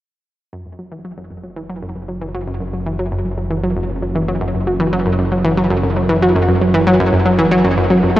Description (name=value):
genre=ambient, sequencer-driven space music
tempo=116 BPM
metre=4/4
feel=straight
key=unclear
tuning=A4 = 436 Hz
part: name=analog pluck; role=riff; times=0.5-8.2 s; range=F#2 to A3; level=-15 LUFS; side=equal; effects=chorus, tape echo
part: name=analog drone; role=bass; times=1.9-8.2 s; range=F#1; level=-23 LUFS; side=equal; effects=chorus, phaser, tube saturation
room=wet huge ambient reverb, RT60 7.5 s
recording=worn, warbling old tape, cassette tape, warbly pitch drift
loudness=-14 LUFS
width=side -14 dB against mid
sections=0.5-8.2 A section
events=fade-in on synth arpeggio sound 0.5-8.2; fade-in on synth drone 0.5-8.2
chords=none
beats=| 0.53 1.05 1.57 2.08 | 2.60 3.12 3.64 4.15 | 4.67 5.19 5.70 6.22 | 6.74 7.26 7.77